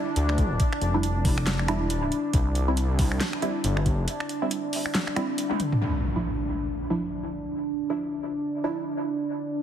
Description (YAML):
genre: deep dubstep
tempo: 138 BPM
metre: 4/4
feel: swing 59% on 16ths, half-time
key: D minor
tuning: A4 = 439 Hz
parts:
  - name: deep dark ambient pad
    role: sustained chords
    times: 0.0-9.6 s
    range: D4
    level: -30 LUFS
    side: right 1 dB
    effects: chorus, built-in reverb
  - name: filtered dub chord stab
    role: stabs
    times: 0.0-9.3 s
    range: F3 to E4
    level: -31 LUFS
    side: right 2 dB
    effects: phaser, lush chorus, dub echo
  - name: dark detuned saw bass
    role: bass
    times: 0.2-4.1 s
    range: E1 to D2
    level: -25 LUFS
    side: equal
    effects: none
  - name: dubstep drum kit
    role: drums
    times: 0.2-5.8 s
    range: finger snaps, handclaps, hi-hat, snare drum, toms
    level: -30 LUFS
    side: equal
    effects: studio reverb
  - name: electronic kick drum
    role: drums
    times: 0.4-4.0 s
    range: none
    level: -23 LUFS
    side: equal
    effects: studio reverb
  - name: impact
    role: sound effects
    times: 5.8-7.6 s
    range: none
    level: -31 LUFS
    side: left 1 dB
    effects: none
room: moderate lush hall reverb, RT60 2.2 s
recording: heavily compressed radio sound, multiband compression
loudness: -24 LUFS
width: side -9 dB against mid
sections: 0.0-5.8 A section; 5.8-9.6 B section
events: drop 0.0-5.8; break 4.1-5.8; drum fill 5.5-5.8; impact 5.8-7.6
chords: 0.0 Em7; 2.3 C; 5.8 Dmadd9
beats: 0.16 | 0.60 1.03 1.47 1.90 | 2.34 2.77 3.21 3.64 | 4.08 4.51 4.95 5.38 | 5.82 6.25 6.68 7.12 | 7.55 7.99 8.42 8.86 | 9.29